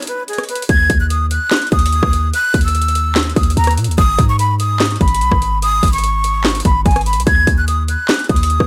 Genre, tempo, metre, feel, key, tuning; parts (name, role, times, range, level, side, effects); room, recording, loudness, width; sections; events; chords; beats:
hip hop, trap; 146 BPM; 4/4; half-time; Eb phrygian; A4 = 440 Hz
breathy jazz flute; melody; 0.0-8.7 s; Ab4 to Ab6; -19 LUFS; equal; tape echo
trap drum kit; drums; 0.0-8.7 s; handclaps, hi-hat, kick drum, rim click, snare drum; -19 LUFS; equal
hard-hitting 808-style bass; bass; 0.7-8.7 s; Ab1 to Bb2; -19 LUFS; equal
little or no reverb; -15 LUFS; mono
0.7-8.7 A section
break 0.0-0.7
0.0 Abm; 0.7 Ebm; 4.0 Abm; 7.3 Ebm
0.28 | 0.69 1.10 1.51 1.93 | 2.34 2.75 3.16 3.57 | 3.98 4.39 4.80 5.21 | 5.62 6.03 6.45 6.86 | 7.27 7.68 8.09 8.50